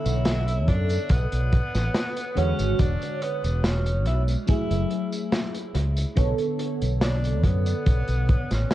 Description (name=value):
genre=vaporwave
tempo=71 BPM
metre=4/4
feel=straight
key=B dorian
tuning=A4 = 440 Hz
part: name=clear tenor saxophone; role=melody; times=0.0-8.7 s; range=B3 to E4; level=-33 LUFS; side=equal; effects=tape echo
part: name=FM electric piano with soft pad layer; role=accompaniment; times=0.0-8.7 s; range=D3 to C#5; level=-29 LUFS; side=right 1 dB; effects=phaser, analog chorus, analog delay
part: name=fretless electric bass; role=bass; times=0.1-8.6 s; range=E1 to F#2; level=-24 LUFS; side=equal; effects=lush chorus
part: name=crunchy breakbeat drum kit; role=drums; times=0.1-8.7 s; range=hi-hat, snare drum, tambourine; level=-29 LUFS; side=equal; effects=vintage 12-bit sampler grit, analog delay
part: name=kick drum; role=drums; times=0.7-8.5 s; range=none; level=-22 LUFS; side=equal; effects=vintage 12-bit sampler grit
room=light reverb, studio ambience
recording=echo-heavy mix, cassette tape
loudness=-22 LUFS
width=side -14 dB against mid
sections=0.0-8.7 A section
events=none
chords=0.0 Bm9; 2.4 E13; 4.5 F#m9; 6.2 Bm9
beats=0.26 1.10 1.95 | 2.79 3.64 4.48 5.33 | 6.17 7.02 7.86 8.71